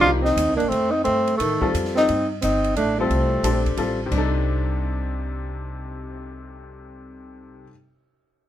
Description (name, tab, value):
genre	modal jazz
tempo	176 BPM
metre	3/4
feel	swing 65% on 8ths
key	C dorian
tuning	A4 = 440 Hz
part	breathy tenor saxophone	melody	0.0-3.8 s	A3 to F4	-21 LUFS	equal	none
part	mellow alto saxophone	second line	0.0-3.7 s	Eb3 to D4	-25 LUFS	right 2 dB	none
part	bright upright piano	accompaniment	0.0-7.7 s	C3 to C5	-27 LUFS	left 3 dB	none
part	upright bass	bass	0.0-7.6 s	G1 to A2	-26 LUFS	equal	none
part	compact cocktail drum kit	drums	0.3-6.1 s	crash cymbal, cymbal swell, hi-hat, kick drum, ride cymbal, snare drum	-32 LUFS	right 1 dB	none
room	light reverb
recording	minimal, uncompressed stereo recording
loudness	-19 LUFS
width	side -12 dB against mid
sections	0.0-4.1 A section; 4.1-6.2 B section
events	none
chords	0.0 Cm6; 4.1 Cm69